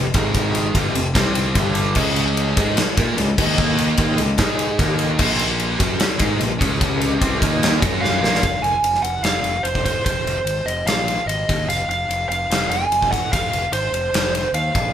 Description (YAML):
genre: hard rock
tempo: 148 BPM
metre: 4/4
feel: straight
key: F minor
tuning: A4 = 440 Hz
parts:
  - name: biting overdriven guitar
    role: riff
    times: 0.0-8.4 s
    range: F2 to Bb4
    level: -21 LUFS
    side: right 1 dB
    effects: none
  - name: fuzz fingered electric bass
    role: bass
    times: 0.0-14.9 s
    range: F1 to Bb2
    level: -25 LUFS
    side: equal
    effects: overdrive
  - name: gated 80s drum kit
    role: drums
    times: 0.1-14.8 s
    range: crash cymbal, kick drum, ride cymbal, snare drum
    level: -20 LUFS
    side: left 1 dB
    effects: none
  - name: biting lead guitar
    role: melody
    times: 8.0-14.9 s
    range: C5 to Ab5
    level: -20 LUFS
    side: right 2 dB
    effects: overdrive
room: moderate large studio reverb, RT60 1.4 s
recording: band playing live in one room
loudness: -17 LUFS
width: side -9 dB against mid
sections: 0.0-8.4 A section; 8.4-14.9 B section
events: drum fill 8.0-8.4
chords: 0.1 Ab5; 0.8 F5; 1.2 C5; 1.6 G5; 2.0 Db5; 3.4 Eb5; 4.0 Db5; 4.4 Ab5; 4.8 Eb5; 5.2 Bb5; 6.6 Db5; 7.2 C5; 7.4 Eb5; 7.8 Gb5; 8.2 Bb5; 8.4 F5; 11.3 Ab5; 11.5 N.C.; 11.7 F5; 14.5 Ebsus2; 14.7 Bb5